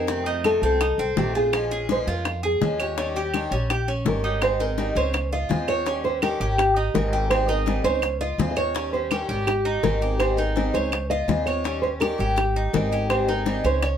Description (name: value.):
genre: latin, Cuban son and guajira.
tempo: 166 BPM.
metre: 4/4.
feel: straight.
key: Ab major.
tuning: A4 = 437 Hz.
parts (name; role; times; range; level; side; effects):
nylon-string guitar; melody; 0.0-14.0 s; G4 to Eb5; -25 LUFS; right 2 dB; plate reverb.
picked acoustic archtop guitar; accompaniment; 0.0-13.9 s; C3 to Ab4; -29 LUFS; left 2 dB; none.
Cuban tres; arpeggios; 0.0-14.0 s; C4 to Db5; -28 LUFS; left 1 dB; none.
upright bass; bass; 0.0-14.0 s; Ab1 to F2; -28 LUFS; equal; none.
bongos; percussion; 0.1-14.0 s; none; -28 LUFS; left 6 dB; none.
claves; percussion; 0.4-14.0 s; none; -30 LUFS; right 4 dB; none.
room: light reverb.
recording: none.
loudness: -21 LUFS.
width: side -9 dB against mid.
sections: 0.0-4.4 A section; 4.4-14.0 B section.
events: none.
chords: 0.1 F7; 1.5 Bbm7; 3.0 Eb7; 4.4 Abmaj7; 5.1 Dbmaj9; 5.9 Eb7; 6.6 Abmaj7; 8.0 Dbmaj9; 8.8 Eb7; 9.5 Abmaj7; 10.9 Dbmaj9; 11.6 Eb7; 12.4 Abmaj7.